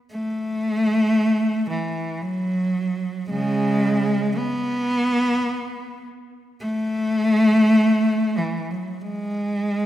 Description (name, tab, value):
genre	classical, free, expressive piece for unaccompanied cello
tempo	free time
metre	none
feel	none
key	unclear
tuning	A4 = 438 Hz
part	dark cello	solo	0.1-9.9 s	C#3 to B3	-19 LUFS	equal	none
room	wet concert hall reverb, RT60 2.4 s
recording	none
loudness	-19 LUFS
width	side -13 dB against mid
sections	0.0-9.9 A section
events	none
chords	none